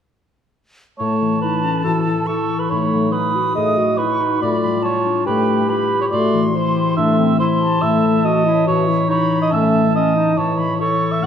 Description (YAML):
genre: cinematic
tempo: 141 BPM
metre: 4/4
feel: straight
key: A lydian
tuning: A4 = 441 Hz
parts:
  - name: bright concert flute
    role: second line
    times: 1.0-11.3 s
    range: G5 to D#6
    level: -26 LUFS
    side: left 1 dB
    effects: none
  - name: dark cor anglais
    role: second line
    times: 1.0-11.3 s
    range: A4 to F#5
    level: -19 LUFS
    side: right 4 dB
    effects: none
  - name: warm clarinet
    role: second line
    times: 1.0-11.3 s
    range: C4 to A4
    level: -23 LUFS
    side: equal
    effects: none
  - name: mellow French horn section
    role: sustained chords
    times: 1.0-11.3 s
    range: E3 to A3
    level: -21 LUFS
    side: left 2 dB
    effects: none
  - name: concert harp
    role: arpeggios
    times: 1.0-11.3 s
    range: A2 to C#5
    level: -22 LUFS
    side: left 5 dB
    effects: none
room: wet scoring stage reverb, RT60 1.4 s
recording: none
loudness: -15 LUFS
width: side -8 dB against mid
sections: 1.0-11.3 A section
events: none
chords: 1.0 A; 2.7 B/A; 4.4 G7/A; 6.1 C/A; 7.8 A